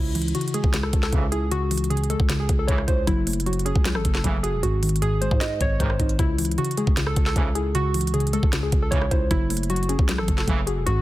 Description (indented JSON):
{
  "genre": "hip hop, trap",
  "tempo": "154 BPM",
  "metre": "4/4",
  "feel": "half-time",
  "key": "C# harmonic minor",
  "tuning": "A4 = 440 Hz",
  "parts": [
    { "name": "warbly dusty pluck", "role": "melody", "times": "0.0-11.0 s", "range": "E4 to D#5", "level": "-28 LUFS", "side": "equal", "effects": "chorus, ping-pong delay" },
    { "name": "soft round pluck", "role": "accompaniment", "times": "0.0-11.0 s", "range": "G#2 to F#4", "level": "-27 LUFS", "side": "left 2 dB", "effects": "chorus" },
    { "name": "growling 808-style bass", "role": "bass", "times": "0.0-11.0 s", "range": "E1 to G#2", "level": "-26 LUFS", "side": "equal", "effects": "none" },
    { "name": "trap drum kit", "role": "drums", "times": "0.2-11.0 s", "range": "hi-hat, kick drum, rim click, snare drum", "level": "-23 LUFS", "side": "equal", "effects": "none" },
    { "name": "warm brass ensemble", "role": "stabs", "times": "1.1-10.6 s", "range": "G#2 to E3", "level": "-33 LUFS", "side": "right 4 dB", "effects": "none" }
  ],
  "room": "light reverb",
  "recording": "dense, heavily limited modern master",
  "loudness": "-20 LUFS",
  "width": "side -16 dB against mid",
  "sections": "0.0-11.0 A section",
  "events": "none",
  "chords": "0.0 C#m; 3.1 F#m7; 4.6 G#; 6.2 C#m; 9.3 F#m7"
}